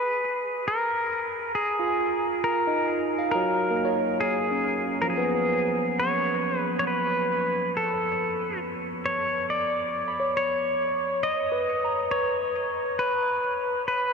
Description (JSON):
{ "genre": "ambient", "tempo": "68 BPM", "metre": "4/4", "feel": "straight", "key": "unclear", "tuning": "A4 = 440 Hz", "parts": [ { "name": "pedal steel guitar", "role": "melody", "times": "0.0-14.1 s", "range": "G#4 to D#5", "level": "-25 LUFS", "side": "left 1 dB", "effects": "tape echo" }, { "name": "barky tine electric piano", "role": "arpeggios", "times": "1.8-14.1 s", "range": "E#3 to B5", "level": "-27 LUFS", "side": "right 1 dB", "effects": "phaser, tape echo" } ], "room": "wet huge ambient reverb, RT60 8.1 s", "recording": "none", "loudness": "-23 LUFS", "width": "side -5 dB against mid", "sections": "0.0-14.1 A section", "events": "fade-in on tine electric piano 0.0-14.1", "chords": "0.0 N.C.; 0.7 D#m; 4.2 C#; 7.7 D5; 11.3 Badd9" }